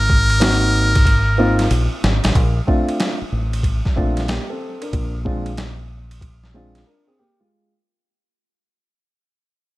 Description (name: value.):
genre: hip hop, jazz-hop.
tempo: 93 BPM.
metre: 4/4.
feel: swing 65% on 16ths.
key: Bb major.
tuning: A4 = 441 Hz.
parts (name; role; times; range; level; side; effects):
trumpet with metal mute; melody; 0.0-1.7 s; Bb4; -19 LUFS; equal; none.
deep dub fingered electric bass; bass; 0.0-6.8 s; Ab1 to Bb1; -20 LUFS; equal; none.
boom bap sampler-style drum kit; drums; 0.1-6.9 s; hi-hat, kick drum, ride cymbal, snare drum; -20 LUFS; equal; none.
dark concert grand piano; accompaniment; 0.4-7.7 s; Ab3 to Bb4; -22 LUFS; equal; none.
room: digital ambience.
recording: none.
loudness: -15 LUFS.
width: side -19 dB against mid.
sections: 0.0-2.3 A section; 2.3-7.5 B section.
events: drum fill 1.7-2.3; fade-out 2.3-7.5; break 6.9-7.5.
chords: 0.0 Ab9; 2.3 Bbmaj9; 4.9 Bb7.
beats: 0.41 1.06 1.70 | 2.35 2.99 3.64 4.28 | 4.93 5.57 6.22 6.86.